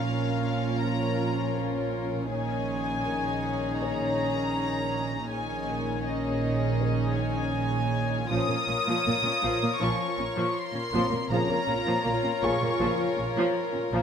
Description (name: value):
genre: cinematic, suspense film score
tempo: 80 BPM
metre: 4/4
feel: straight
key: Bb minor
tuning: A4 = 440 Hz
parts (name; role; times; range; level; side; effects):
- warm studio violin section; melody; 0.0-13.2 s; Eb5 to Eb6; -31 LUFS; left 2 dB; none
- warm studio violin section; second line; 0.0-14.0 s; Ab4 to Db5; -33 LUFS; left 4 dB; none
- warm studio viola section; accompaniment; 0.0-14.0 s; F3 to F4; -32 LUFS; right 1 dB; none
- mellow French horn section; sustained chords; 0.0-13.1 s; Db3 to Db4; -34 LUFS; left 3 dB; none
- dark studio double bass section; bass; 0.0-14.0 s; Bb1; -33 LUFS; right 5 dB; none
- warm studio cello section; bass; 0.0-14.0 s; Bb2; -33 LUFS; right 3 dB; none
- felt-muted upright piano; texture; 0.0-14.0 s; C4 to Bb5; -41 LUFS; left 4 dB; none
room: moderate scoring stage reverb, RT60 1.9 s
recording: none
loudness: -25 LUFS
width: side -7 dB against mid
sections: 0.0-14.0 A section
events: none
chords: 0.0 Bbm; 2.3 Absus4/Bb; 8.3 Bbm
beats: 0.05 0.80 1.55 | 2.30 3.05 3.80 4.55 | 5.30 6.05 6.80 7.55 | 8.30 9.05 9.80 10.55 | 11.30 12.05 12.80 13.55